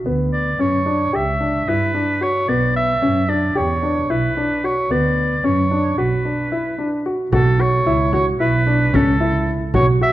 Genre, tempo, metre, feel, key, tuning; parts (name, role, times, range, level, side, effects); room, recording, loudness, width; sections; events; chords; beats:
contemporary instrumental, chamber music in an uneven meter; 223 BPM (eighths); 9/8; straight; B minor; A4 = 443 Hz
warm grand piano; arpeggios; 0.1-10.1 s; B3 to G4; -20 LUFS; left 1 dB
dark double bass; bass; 0.1-10.1 s; B1 to G2; -21 LUFS; right 3 dB
warm oboe; melody; 0.3-10.1 s; A4 to E5; -21 LUFS; equal
frame drum; percussion; 7.3-10.0 s; -23 LUFS; equal
moderate recital hall reverb, RT60 1.8 s; dark, warm production; -16 LUFS; side -14 dB against mid
0.0-7.3 A section; 7.3-10.1 B section
break 6.1-7.3
0.1 Bmadd9/D; 1.1 C#dim; 2.5 Bmadd9; 3.6 Em7; 4.9 Bmadd9/D; 6.0 Bm; 7.3 B9sus4
| 0.06 0.33 0.60 0.86 1.14 1.40 1.67 1.94 2.21 | 2.48 2.75 3.02 3.29 3.56 3.83 4.09 4.36 4.63 | 4.90 5.17 5.44 5.71 5.98 6.25 6.51 6.78 7.05 | 7.32 7.59 7.86 8.13 8.39 8.66 8.93 9.20 9.47 | 9.74 10.01